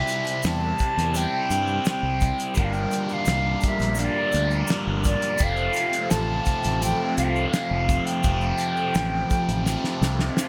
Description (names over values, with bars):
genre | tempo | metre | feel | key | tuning
psychedelic rock | 85 BPM | 4/4 | straight | unclear | A4 = 440 Hz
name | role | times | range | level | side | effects
silver concert flute | melody | 0.0-10.4 s | D5 to A5 | -29 LUFS | equal | tape echo
hand-pumped harmonium | sustained chords | 0.0-10.5 s | G3 to C5 | -37 LUFS | equal | none
biting overdriven guitar | riff | 0.0-10.5 s | F2 to E4 | -29 LUFS | equal | phaser
damped 70s drum kit | drums | 0.1-10.5 s | hi-hat, kick drum, snare drum | -28 LUFS | equal | none
tube shaker | percussion | 0.1-10.5 s | none | -41 LUFS | equal | none
growling fingered electric bass | bass | 0.4-10.3 s | F1 to G2 | -29 LUFS | equal | overdrive
room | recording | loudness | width
light reverb, small room ambience | none | -24 LUFS | mono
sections
0.0-10.5 A section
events
drum fill 9.7-10.5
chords
0.0 C; 2.6 Gm7; 5.4 Fadd9